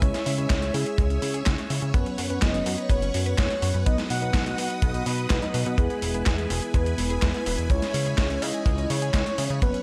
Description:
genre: italo disco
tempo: 125 BPM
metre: 4/4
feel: straight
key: unclear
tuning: A4 = 440 Hz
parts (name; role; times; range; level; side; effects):
- soft octave-layered synth lead; melody; 0.0-9.8 s; G#4 to F#5; -33 LUFS; equal; chorus, delay
- string machine, full ensemble; sustained chords; 0.0-9.8 s; E4 to E6; -37 LUFS; equal; phaser, ensemble chorus
- analog pluck; arpeggios; 0.0-9.8 s; G#3 to B4; -40 LUFS; equal; none
- mellow tine electric piano; stabs; 0.0-9.8 s; F#3 to D#5; -35 LUFS; equal; none
- chorused synth bass; bass; 0.0-9.7 s; E1 to C#3; -30 LUFS; equal; none
- dusty soul sampler-style drum kit; drums; 0.0-9.8 s; handclaps, hi-hat, snare drum; -33 LUFS; equal; overdrive, gated reverb
- kick drum; drums; 0.0-9.7 s; none; -26 LUFS; equal; none
room: little or no reverb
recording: none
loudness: -25 LUFS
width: mono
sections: 0.0-9.8 A section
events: none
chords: 0.0 C#m; 1.9 F#sus4; 3.9 B; 5.8 E; 7.7 C#m

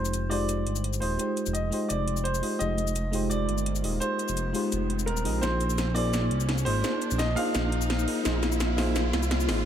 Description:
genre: liquid drum and bass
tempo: 170 BPM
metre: 4/4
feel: straight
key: F dorian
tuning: A4 = 443 Hz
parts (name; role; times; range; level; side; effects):
- clear baby grand piano; melody; 0.0-9.6 s; Bb4 to F5; -32 LUFS; right 1 dB; low-pass filter, digital delay
- mellow FM electric piano; accompaniment; 0.0-9.7 s; Ab3 to Eb5; -30 LUFS; equal; chorus, tape echo
- smooth synth bass; bass; 0.0-9.6 s; Eb1 to C2; -29 LUFS; equal; none
- riser; sound effects; 1.7-9.7 s; none; -36 LUFS; equal; none
- drum and bass drum kit; drums; 0.1-9.6 s; hi-hat, shaker, snare drum; -32 LUFS; equal; none
room: light reverb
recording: none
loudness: -25 LUFS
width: side -9 dB against mid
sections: 0.0-9.7 A section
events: build-up 0.0-9.7; filter sweep on grand piano 0.0-9.7; riser 1.7-9.7; drum fill 5.4-9.7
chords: 0.0 Fm9; 5.4 Bb9sus4

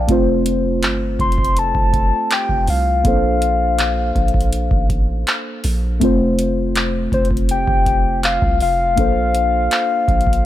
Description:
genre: contemporary R&B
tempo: 81 BPM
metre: 4/4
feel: straight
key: F major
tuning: A4 = 440 Hz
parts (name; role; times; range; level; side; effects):
- muted felt-like synth keys; accompaniment; 0.0-10.5 s; A3 to A5; -21 LUFS; equal; chorus
- long sustained 808-style bass; bass; 0.0-10.5 s; F1 to C2; -21 LUFS; equal; none
- booming analog drum machine; drums; 0.1-10.5 s; handclaps, hi-hat, kick drum; -19 LUFS; equal; none
- soft octave-layered synth lead; melody; 1.2-10.5 s; C5 to C6; -18 LUFS; left 3 dB; chorus
room: little or no reverb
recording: none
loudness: -15 LUFS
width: side -13 dB against mid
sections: 0.0-10.5 A section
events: none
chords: 0.1 F; 3.0 Bbmaj9; 6.0 F; 9.0 Bbmaj9

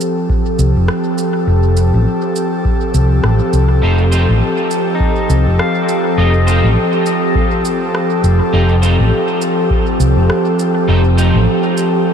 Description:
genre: ambient dub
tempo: 102 BPM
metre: 4/4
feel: swing 58% on 16ths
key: F mixolydian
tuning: A4 = 439 Hz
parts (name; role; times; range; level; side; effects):
- airy breathy pad; sustained chords; 0.0-12.1 s; F3 to A4; -15 LUFS; equal; chorus
- electronic shaker and rim click; drums; 0.0-11.9 s; none; -28 LUFS; equal; overdrive, small room ambience, dub echo
- electronic kick drum; drums; 0.3-9.8 s; none; -16 LUFS; equal; small room ambience
- hollow-body short-scale fingered electric bass; bass; 0.6-11.5 s; F1 to C2; -12 LUFS; equal; none
- electric guitar at the edge of break-up; stabs; 3.8-11.4 s; A3 to C5; -23 LUFS; right 1 dB; ensemble chorus, dub echo
- pedal steel guitar; arpeggios; 5.0-7.9 s; C4 to F5; -24 LUFS; left 3 dB; ping-pong delay
room: moderate huge ambient reverb, RT60 8.7 s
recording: dreamy mix soaked in reverb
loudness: -11 LUFS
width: side -8 dB against mid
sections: 0.0-12.1 A section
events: none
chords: 0.0 F7

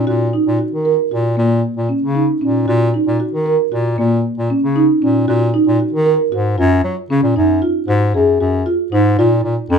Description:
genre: contemporary instrumental, chamber music in an uneven meter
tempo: 230 BPM (eighths)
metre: 5/8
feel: straight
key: unclear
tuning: A4 = 440 Hz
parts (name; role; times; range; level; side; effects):
- marimba with soft mallets; arpeggios; 0.0-9.8 s; Bb3 to Bb4; -16 LUFS; right 2 dB; none
- clear bass clarinet; bass; 0.0-9.8 s; F2 to Gb3; -16 LUFS; left 1 dB; none
room: moderate studio ambience, RT60 0.5 s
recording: minimal, uncompressed stereo recording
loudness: -13 LUFS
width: side -6 dB against mid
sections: 0.0-6.6 A section; 6.6-9.8 B section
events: none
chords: 0.1 Ebm/Bb; 1.4 Bbm; 2.7 Ebm/Bb; 4.0 Bbm; 5.3 Ebmadd11; 6.6 Gbmaj7(no3); 7.9 Ab5; 9.2 Bbm

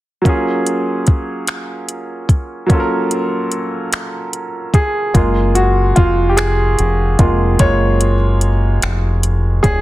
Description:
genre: slow six-eight R&B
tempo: 49 BPM (dotted quarters)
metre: 6/8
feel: straight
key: F# major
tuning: A4 = 440 Hz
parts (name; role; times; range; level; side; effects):
- clear baby grand piano; accompaniment; 0.2-9.8 s; F#3 to C#5; -17 LUFS; right 1 dB; none
- smooth R&B drum kit; drums; 0.3-9.8 s; finger snaps, hi-hat, kick drum; -14 LUFS; equal; soft clipping on snare
- deep dub fingered electric bass; bass; 5.2-9.8 s; D#1 to F#1; -15 LUFS; equal; none
room: light reverb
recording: dense, heavily limited modern master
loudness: -13 LUFS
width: side -16 dB against mid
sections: 0.2-5.1 A section; 5.1-9.8 B section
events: grand piano solo 5.1-9.8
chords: 0.2 F#maj9

